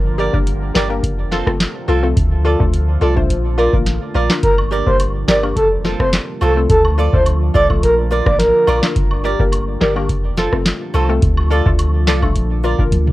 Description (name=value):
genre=dancehall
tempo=106 BPM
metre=4/4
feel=straight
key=G minor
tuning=A4 = 440 Hz
part: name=deep dark ambient pad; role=sustained chords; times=0.0-13.1 s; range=D3 to Bb4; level=-27 LUFS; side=equal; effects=chorus, built-in reverb, sidechain pumping, cassette tape
part: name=punchy sub bass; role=bass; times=0.0-13.1 s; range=F1 to D2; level=-18 LUFS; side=equal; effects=none
part: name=hollow square pluck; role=accompaniment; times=0.2-12.9 s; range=A3 to C5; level=-22 LUFS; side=left 6 dB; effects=chorus, cassette tape
part: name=flamenco guitar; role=arpeggios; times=0.2-12.8 s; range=C4 to D5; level=-22 LUFS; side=right 6 dB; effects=cassette tape, analog delay
part: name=booming analog drum machine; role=drums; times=0.3-13.1 s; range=handclaps, hi-hat, kick drum, rim click, snare drum, toms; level=-17 LUFS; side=equal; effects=none
part: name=breathy flute-like synth lead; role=melody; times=4.4-8.8 s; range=A4 to D5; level=-16 LUFS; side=equal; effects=chorus, cassette tape, analog delay
part: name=woodblock and cabasa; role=percussion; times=4.6-12.8 s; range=none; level=-29 LUFS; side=right 1 dB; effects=none
room=light reverb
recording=home recording on cassette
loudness=-13 LUFS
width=side -17 dB against mid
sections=0.0-13.1 A section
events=drum fill 12.9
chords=0.0 Gm; 1.0 F; 2.2 Dm; 3.3 Bb; 4.4 Gm; 5.6 F; 6.7 Dm; 7.8 Bb; 9.0 Gm; 10.1 F; 11.2 Dm; 12.4 Bb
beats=0.47 1.04 1.60 | 2.17 2.73 3.30 3.87 | 4.43 5.00 5.56 6.13 | 6.70 7.26 7.83 8.39 | 8.96 9.53 10.09 10.66 | 11.22 11.79 12.36 12.92